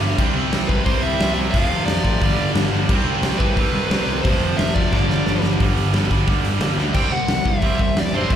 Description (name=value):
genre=punk rock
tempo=178 BPM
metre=4/4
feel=straight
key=unclear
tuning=A4 = 440 Hz
part: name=biting overdriven guitar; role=riff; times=0.0-8.4 s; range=F2 to C4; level=-27 LUFS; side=left 12 dB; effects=slapback echo
part: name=distorted electric guitar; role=riff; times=0.0-8.4 s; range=F2 to C4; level=-24 LUFS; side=right 13 dB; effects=overdrive, slapback echo
part: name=thick fuzz guitar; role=riff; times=0.0-8.4 s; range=F2 to C4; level=-28 LUFS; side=left 1 dB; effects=distortion, slapback echo
part: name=fuzz picked electric bass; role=bass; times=0.0-8.4 s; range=F1 to G2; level=-23 LUFS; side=equal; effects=overdrive
part: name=big rock drum kit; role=drums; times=0.2-8.4 s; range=crash cymbal, hi-hat, kick drum, snare drum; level=-21 LUFS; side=equal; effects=none
part: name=biting lead guitar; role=melody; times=0.7-8.4 s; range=B4 to G5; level=-25 LUFS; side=left 1 dB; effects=overdrive, slapback echo
room=small room ambience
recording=live gig heard through the venue's PA, recital hall reverb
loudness=-16 LUFS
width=side -9 dB against mid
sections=0.0-5.6 A section; 5.6-6.9 B section; 6.9-8.4 C section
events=drum fill 4.9-5.6, 6.8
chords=0.2 C; 1.5 F; 2.2 G5; 2.9 C5; 4.2 F5; 4.9 G5; 6.9 C